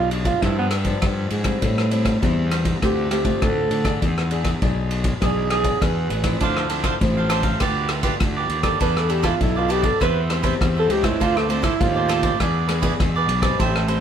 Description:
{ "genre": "samba and choro", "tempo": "100 BPM", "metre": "4/4", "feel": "straight", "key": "unclear", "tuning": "A4 = 439 Hz", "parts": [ { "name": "breathy alto saxophone", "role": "melody", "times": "0.0-12.4 s", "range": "A3 to B4", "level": "-22 LUFS", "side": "right 3 dB", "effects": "none" }, { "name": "nylon-string guitar", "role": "accompaniment", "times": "0.0-14.0 s", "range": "G2 to B4", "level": "-27 LUFS", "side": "left 3 dB", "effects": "none" }, { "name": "fuzz fingered electric bass", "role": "bass", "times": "0.0-14.0 s", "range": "A1 to D3", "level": "-23 LUFS", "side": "equal", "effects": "overdrive" }, { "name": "vintage drum kit", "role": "drums", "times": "0.1-14.0 s", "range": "kick drum, ride cymbal, rim click", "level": "-24 LUFS", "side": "equal", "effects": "none" }, { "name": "cavaquinho", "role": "accompaniment", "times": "6.4-14.0 s", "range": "D4 to G5", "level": "-25 LUFS", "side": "right 6 dB", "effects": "none" } ], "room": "moderate stone room reverb, RT60 1.0 s", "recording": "band playing live in one room", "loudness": "-18 LUFS", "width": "side -8 dB against mid", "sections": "0.0-14.0 A section", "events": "alto saxophone solo 0.0-14.0", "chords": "0.4 G7; 1.6 Am7; 2.8 Dm7; 4.0 E7; 6.4 Dm9; 7.6 G7/D; 8.8 E7sus4; 10.0 Cmaj7/E; 11.2 Dm7; 12.4 E7" }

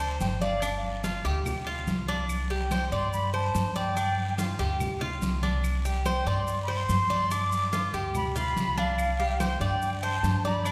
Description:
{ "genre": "latin, Cuban son and guajira", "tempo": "144 BPM", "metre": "4/4", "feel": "straight", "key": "unclear", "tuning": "A4 = 437 Hz", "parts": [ { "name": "concert flute", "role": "melody", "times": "0.0-10.7 s", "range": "F5 to D6", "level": "-32 LUFS", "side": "equal", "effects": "none" }, { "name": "Cuban tres", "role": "arpeggios", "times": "0.0-10.7 s", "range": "D4 to D5", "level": "-34 LUFS", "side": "equal", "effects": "none" }, { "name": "upright bass", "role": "bass", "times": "0.0-10.7 s", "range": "G1 to G2", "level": "-33 LUFS", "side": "equal", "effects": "none" }, { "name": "claves", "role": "percussion", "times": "0.0-10.7 s", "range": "none", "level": "-47 LUFS", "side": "equal", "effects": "none" }, { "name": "congas", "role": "percussion", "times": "0.0-10.7 s", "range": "none", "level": "-36 LUFS", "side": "equal", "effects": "none" }, { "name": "maracas", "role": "percussion", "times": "0.0-10.7 s", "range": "none", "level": "-49 LUFS", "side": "equal", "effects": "none" }, { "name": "guiro", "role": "percussion", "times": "0.2-10.7 s", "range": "none", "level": "-46 LUFS", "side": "equal", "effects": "none" } ], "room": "wet scoring stage reverb, RT60 1.6 s", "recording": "recorded in a church or concert hall", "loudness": "-28 LUFS", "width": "mono", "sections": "0.0-10.7 A section", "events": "none", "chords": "0.0 G5; 2.3 Csus2; 4.0 G5; 5.6 Csus2; 7.3 G7; 9.0 Csus2" }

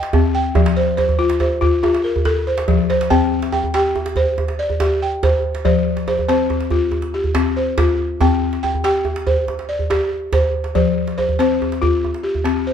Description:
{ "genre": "west african traditional, West African string and xylophone music", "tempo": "94 BPM (dotted quarters)", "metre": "12/8", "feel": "straight", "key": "unclear", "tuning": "A4 = 440 Hz", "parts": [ { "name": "balafon", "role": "arpeggios", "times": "0.0-12.7 s", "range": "F3 to G5", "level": "-17 LUFS", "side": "left 2 dB", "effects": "none" }, { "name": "djembe", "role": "percussion", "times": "0.0-12.7 s", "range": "none", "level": "-20 LUFS", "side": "right 2 dB", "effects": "none" } ], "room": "moderate large studio reverb, RT60 1.1 s", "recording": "band playing live in one room", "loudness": "-15 LUFS", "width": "side -8 dB against mid", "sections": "0.0-3.1 A section; 3.1-12.7 B section", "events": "drum fill 2.8-3.1", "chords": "0.0 Cm; 0.5 F; 3.1 C5; 5.6 F5; 8.2 C5; 10.7 F5" }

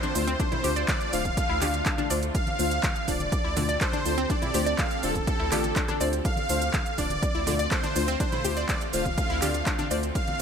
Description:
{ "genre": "progressive house", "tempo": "123 BPM", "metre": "4/4", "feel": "straight", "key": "D minor", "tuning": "A4 = 440 Hz", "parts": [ { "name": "soft supersaw", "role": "melody", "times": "0.0-10.4 s", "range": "A4 to F5", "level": "-30 LUFS", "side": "equal", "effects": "digital delay" }, { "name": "shimmering ambient pad", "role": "sustained chords", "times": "0.0-10.4 s", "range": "D3 to A4", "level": "-35 LUFS", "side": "right 2 dB", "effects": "chorus, built-in reverb, sidechain pumping" }, { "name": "analog pluck", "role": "arpeggios", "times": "0.0-10.0 s", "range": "D3 to D5", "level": "-33 LUFS", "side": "equal", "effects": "chorus, sidechain pumping, digital delay" }, { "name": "deep house drum kit", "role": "drums", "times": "0.0-10.4 s", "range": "handclaps, hi-hat, rim click, shaker", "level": "-31 LUFS", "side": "right 2 dB", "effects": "sidechain pumping on hats, sidechain pumping on cymbals, sidechain pumping on perc" }, { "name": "congas", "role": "percussion", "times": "0.0-10.4 s", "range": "none", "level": "-39 LUFS", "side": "left 2 dB", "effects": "none" }, { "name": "downlifter", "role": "sound effects", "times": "0.5-2.3 s", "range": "none", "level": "barely audible", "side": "none", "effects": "none" }, { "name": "deep mellow chord stab", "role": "stabs", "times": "0.2-10.4 s", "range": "D3 to D5", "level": "-32 LUFS", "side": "left 3 dB", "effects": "chorus, sidechain pumping, digital delay" }, { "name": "round analog bass", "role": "bass", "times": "0.2-10.1 s", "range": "D1 to D2", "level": "-32 LUFS", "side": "equal", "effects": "sidechain pumping" }, { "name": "electronic kick drum", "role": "drums", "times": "0.4-10.2 s", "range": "none", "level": "-29 LUFS", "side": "equal", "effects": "none" } ], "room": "light reverb", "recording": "none", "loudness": "-24 LUFS", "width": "side -7 dB against mid", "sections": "0.0-10.4 A section", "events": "none", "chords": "0.0 Dm7" }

